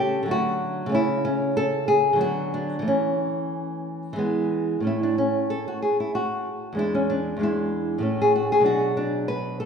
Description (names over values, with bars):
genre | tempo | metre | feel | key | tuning
classical, baroque-style dance for nylon-string guitar | 94 BPM | 3/4 | rubato | A major | A4 = 440 Hz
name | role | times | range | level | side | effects
nylon-string guitar | solo | 0.0-9.7 s | E2 to B4 | -22 LUFS | equal | none
room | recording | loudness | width
wet scoring stage reverb, RT60 1.9 s | recorded in a church or concert hall | -21 LUFS | side -6 dB against mid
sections
0.0-4.9 A section; 4.9-9.7 A section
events
none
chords
0.3 D; 0.9 A/C#; 2.2 Bm/D; 2.9 A/E; 4.2 E; 4.9 A; 6.8 E7; 8.0 A; 8.7 Bm